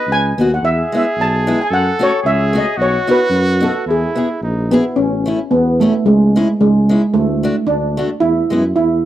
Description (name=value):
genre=alpine folk, alpine dance band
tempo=110 BPM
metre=2/4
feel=swing 55% on 8ths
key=E major, A major from 5.0 s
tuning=A4 = 440 Hz
part: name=steel pan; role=melody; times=0.0-9.1 s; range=G#3 to A5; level=-15 LUFS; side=right 1 dB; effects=none
part: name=warm trumpet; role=second line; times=0.0-5.0 s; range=D#4 to B4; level=-21 LUFS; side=right 3 dB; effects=none
part: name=mellow tuba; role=bass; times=0.1-9.0 s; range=A1 to F#2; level=-18 LUFS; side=equal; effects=none
part: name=picked acoustic archtop guitar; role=accompaniment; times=0.4-8.6 s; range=G#3 to G#4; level=-17 LUFS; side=left 2 dB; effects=none
room=studio reverb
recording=dry, close 1970s-style studio recording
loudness=-12 LUFS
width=side -12 dB against mid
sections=0.0-5.0 A section; 5.0-9.1 B section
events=none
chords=0.0 B; 0.6 E; 1.7 F#m; 2.8 B; 3.9 E; 5.0 A; 6.1 C#m; 7.1 D; 8.2 E